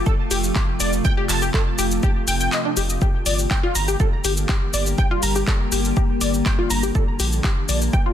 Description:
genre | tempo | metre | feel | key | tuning
melodic techno | 122 BPM | 4/4 | straight | G minor | A4 = 442 Hz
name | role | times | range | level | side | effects
evolving wavetable pad | sustained chords | 0.0-8.1 s | C3 to G4 | -26 LUFS | left 1 dB | chorus, built-in reverb, sidechain pumping
round analog bass | bass | 0.0-7.9 s | F1 to Bb1 | -23 LUFS | equal | sidechain pumping
tight sequenced synth | arpeggios | 0.1-8.1 s | D4 to Bb5 | -25 LUFS | left 1 dB | chorus, sidechain pumping, dub echo
electronic kick drum | drums | 0.1-8.0 s | none | -20 LUFS | equal | none
punchy analog drum machine | drums | 0.1-8.0 s | handclaps, hi-hat, shaker | -25 LUFS | left 1 dB | sidechain pumping on perc, sidechain pumping on hats
room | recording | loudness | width
light reverb, digital ambience | dense, heavily limited modern master | -18 LUFS | side -10 dB against mid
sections
0.0-8.1 A section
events
kick drops out 2.5-3.0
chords
0.0 F; 3.0 Gm; 7.0 Bb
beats
0.06 0.56 | 1.05 1.54 2.03 2.52 | 3.02 3.51 4.00 4.49 | 4.98 5.47 5.97 6.46 | 6.95 7.44 7.93

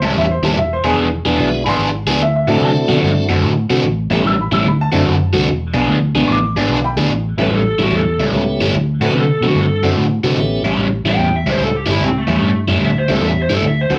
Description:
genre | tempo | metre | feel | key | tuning
electric blues shuffle | 147 BPM | 4/4 | swing 66% on 8ths | A mixolydian | A4 = 440 Hz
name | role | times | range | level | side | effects
warm upright piano | second line | 0.0-7.1 s | G#4 to E6 | -23 LUFS | equal | none
overdriven semi-hollow guitar | riff | 0.0-14.0 s | A2 to G#4 | -18 LUFS | equal | phaser
vintage muted fingered electric bass | bass | 0.0-14.0 s | E1 to C3 | -21 LUFS | equal | none
tonewheel organ | accompaniment | 1.4-13.2 s | G#3 to G4 | -22 LUFS | equal | slow rotary speaker, overdrive
lead guitar through a small cranked amp | melody | 7.4-14.0 s | A3 to G5 | -22 LUFS | equal | overdrive
room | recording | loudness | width
wet studio ambience, RT60 0.5 s | none | -16 LUFS | mono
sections
0.0-7.1 A section; 7.1-14.0 A section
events
upright piano solo 0.0-7.1; lead electric guitar solo 7.1-14.0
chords
0.0 A7; 0.6 E7; 2.2 D7; 3.8 A7; 4.7 D7; 5.5 E7; 7.1 A7; 8.7 D7; 10.4 A7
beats
0.17 | 0.58 0.99 1.40 1.80 | 2.21 2.62 3.03 3.44 | 3.85 4.26 4.66 5.07 | 5.48 5.89 6.30 6.71 | 7.11 7.52 7.93 8.34 | 8.74 9.15 9.56 9.97 | 10.38 10.78 11.19 11.60 | 12.01 12.41 12.82 13.23 | 13.63

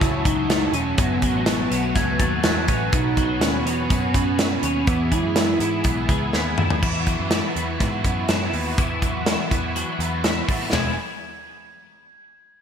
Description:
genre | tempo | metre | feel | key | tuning
jangly indie pop | 123 BPM | 4/4 | straight | E major | A4 = 440 Hz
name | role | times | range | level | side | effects
warbly nostalgic lead | melody | 0.0-6.1 s | B3 to E4 | -25 LUFS | right 2 dB | chorus
raw garage guitar | accompaniment | 0.0-10.9 s | E3 to G#4 | -29 LUFS | right 4 dB | overdrive, ensemble chorus
hollow soft pad | sustained chords | 0.0-6.8 s | F#4 to B5 | -32 LUFS | right 1 dB | ensemble chorus
twelve-string electric guitar | arpeggios | 0.0-10.9 s | F#2 to E4 | -27 LUFS | left 6 dB | ensemble chorus, ping-pong delay
vintage muted picked electric bass | bass | 0.0-11.0 s | E1 to G#2 | -27 LUFS | equal | none
modern studio drum kit | drums | 0.0-10.8 s | crash cymbal, hi-hat, kick drum, ride cymbal, snare drum, toms | -23 LUFS | equal | gated reverb
glockenspiel with soft plastic mallets | second line | 2.0-2.8, 10.7-11.0 s | F#6 to A6 | -33 LUFS | left 1 dB | none
room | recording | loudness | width
moderate lush hall reverb, RT60 2.0 s | bright 1980s-style digital production | -19 LUFS | side -8 dB against mid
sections
0.0-6.8 A section; 6.8-10.7 B section; 10.7-12.6 C section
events
drum fill 6.3-6.8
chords
0.0 F#m; 2.9 Bsus2; 4.9 E; 6.8 Esus2; 10.7 E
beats
0.01 0.50 | 0.98 1.47 1.96 2.44 | 2.93 3.42 3.90 4.39 | 4.88 5.37 5.85 6.34 | 6.83 7.31 7.80 8.29 | 8.78 9.26 9.75 10.24 | 10.73

